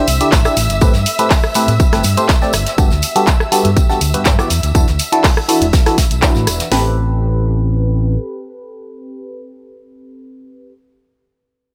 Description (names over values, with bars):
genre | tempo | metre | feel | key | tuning
piano house | 122 BPM | 4/4 | straight | A dorian | A4 = 440 Hz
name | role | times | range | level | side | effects
warm symphonic violin section | sustained chords | 0.0-6.7 s | E5 to E6 | -26 LUFS | equal | sidechain pumping
barking FM electric piano | riff | 0.0-10.7 s | G2 to E5 | -21 LUFS | equal | phaser, sidechain pumping, dub echo
overdriven fingered electric bass | bass | 0.1-8.2 s | E1 to A2 | -19 LUFS | equal | sidechain pumping
jazz brush drum kit | drums | 0.1-6.7 s | hi-hat, snare drum, tambourine | -28 LUFS | equal | high-pass filter on hats, high-pass filter on snare, high-pass filter on perc, high-pass filter on room
punchy analog drum machine | drums | 0.1-6.7 s | handclaps, hi-hat, rim click | -21 LUFS | equal | none
tambourine | percussion | 0.1-6.7 s | none | -30 LUFS | equal | none
house drum kit | drums | 0.3-6.8 s | hi-hat, kick drum, snare drum | -15 LUFS | equal | none
room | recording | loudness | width
small room ambience | none | -14 LUFS | mono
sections
0.0-6.7 A section; 6.7-10.7 B section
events
drop 0.0-6.7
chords
0.0 D9sus4; 0.6 Am9; 2.8 Gmaj9; 4.5 E9sus4; 6.7 Am9